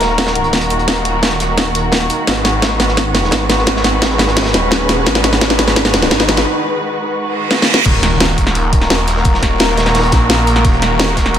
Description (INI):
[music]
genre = dark technical drum and bass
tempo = 172 BPM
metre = 4/4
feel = straight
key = Eb minor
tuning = A4 = 440 Hz
[part]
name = muted studio string section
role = sustained chords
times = 0.0-11.4 s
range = Eb3 to Cb5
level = -17 LUFS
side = equal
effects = sidechain pumping
[part]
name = snarling distorted saw bass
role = bass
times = 0.0-11.4 s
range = Eb1 to Bb1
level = -17 LUFS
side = equal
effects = distortion, overdrive, sidechain pumping
[part]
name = crunchy breakbeat drum kit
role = drums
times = 0.0-11.4 s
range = hi-hat, snare drum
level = -23 LUFS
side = equal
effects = none
[part]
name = drum and bass drum kit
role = drums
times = 0.0-11.4 s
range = crash cymbal, hi-hat, snare drum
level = -15 LUFS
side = equal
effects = small room ambience
[part]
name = riser, reverse cymbal and impact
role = sound effects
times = 1.7-9.3 s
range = none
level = -22 LUFS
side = right 1 dB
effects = none
[part]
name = electronic kick drum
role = drums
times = 0.2-11.2 s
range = none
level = -16 LUFS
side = equal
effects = high-pass filter on kick, small room ambience, high-pass filter on room
[sound]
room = light reverb, studio reverb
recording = none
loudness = -11 LUFS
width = side -9 dB against mid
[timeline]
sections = 0.0-7.9 A section; 7.9-11.4 B section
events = build-up 0.0-7.9; drum fill 0.0-6.5, 7.5-7.9; riser 1.7-6.5; break 6.5-7.9; reverse cymbal 7.3-7.9; drop 7.9-11.4; impact 7.9-9.3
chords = 0.0 Ebm; 2.3 Abm7; 7.9 Ebm